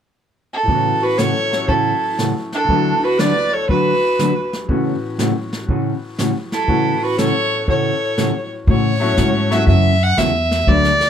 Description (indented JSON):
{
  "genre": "country, western swing",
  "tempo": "120 BPM",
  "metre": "4/4",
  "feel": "swing 68% on 8ths",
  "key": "A major",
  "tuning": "A4 = 440 Hz",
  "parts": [
    { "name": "dark fiddle", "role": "melody", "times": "0.5-11.1 s", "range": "A4 to F#5", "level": "-18 LUFS", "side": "right 1 dB", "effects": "none" },
    { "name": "bright upright piano", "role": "accompaniment", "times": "0.6-9.7 s", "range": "D2 to A4", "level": "-26 LUFS", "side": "left 4 dB", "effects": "none" },
    { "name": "hollow-body jazz guitar", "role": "accompaniment", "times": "0.7-10.9 s", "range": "A2 to B4", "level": "-19 LUFS", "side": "equal", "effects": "none" },
    { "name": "jazz brush drum kit", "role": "drums", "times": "0.7-11.1 s", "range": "brushed snare drum, hi-hat, kick drum, snare drum", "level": "-24 LUFS", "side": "equal", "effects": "none" },
    { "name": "bright clarinet", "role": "second line", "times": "1.0-8.5 s", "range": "D4 to B4", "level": "-22 LUFS", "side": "right 4 dB", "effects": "none" },
    { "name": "upright bass", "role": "bass", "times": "8.7-11.1 s", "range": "D2 to A2", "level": "-16 LUFS", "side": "equal", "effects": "none" }
  ],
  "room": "moderate booth ambience, RT60 0.2 s",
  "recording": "none",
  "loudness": "-15 LUFS",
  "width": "side -8 dB against mid",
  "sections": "0.7-8.7 A section; 8.7-11.1 B section",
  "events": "none",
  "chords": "0.0 N.C.; 0.7 A6; 2.7 D6; 4.7 A6"
}